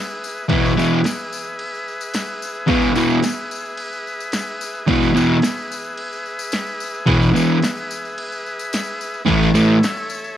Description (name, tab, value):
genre	garage rock duo or trio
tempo	110 BPM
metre	4/4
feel	straight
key	E major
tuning	A4 = 440 Hz
part	overdriven combo organ	sustained chords	0.0-10.4 s	G#4 to E5	-27 LUFS	left 1 dB	cassette tape
part	tambourine	percussion	0.1-10.3 s	none	-34 LUFS	left 7 dB	none
part	fuzz guitar	riff	0.5-9.8 s	E2 to A3	-15 LUFS	equal	distortion, cassette tape
part	punchy analog drum machine	drums	0.5-10.0 s	crash cymbal, kick drum, snare drum	-26 LUFS	equal	none
room	light reverb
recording	home recording on cassette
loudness	-17 LUFS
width	side -11 dB against mid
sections	0.0-10.4 A section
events	none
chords	0.0 E; 9.3 A